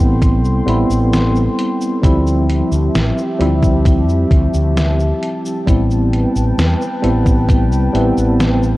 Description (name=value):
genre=vaporwave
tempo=66 BPM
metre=4/4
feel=straight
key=A minor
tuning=A4 = 439 Hz
part: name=tine electric piano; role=accompaniment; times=0.0-8.8 s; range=F3 to E4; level=-17 LUFS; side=equal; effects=medium tremolo, wide subtle chorus, vintage 12-bit sampler grit, tape echo
part: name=warbly tape-like pad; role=sustained chords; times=0.0-8.8 s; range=G4 to C6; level=-24 LUFS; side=left 1 dB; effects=chorus, built-in reverb
part: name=mellow fretless electric bass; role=bass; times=0.0-8.7 s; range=A1 to F2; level=-16 LUFS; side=equal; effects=none
part: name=detuned 8-bit digital drum machine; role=drums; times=0.2-8.8 s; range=cabasa, hi-hat, snare drum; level=-23 LUFS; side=equal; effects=none
part: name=electronic kick drum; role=drums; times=0.2-7.7 s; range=none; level=-14 LUFS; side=equal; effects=none
room=light reverb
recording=worn, warbling old tape, cassette tape, warbly pitch drift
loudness=-12 LUFS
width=side -18 dB against mid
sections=0.0-8.8 A section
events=none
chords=0.0 Am9; 2.0 Dm11; 5.7 Am9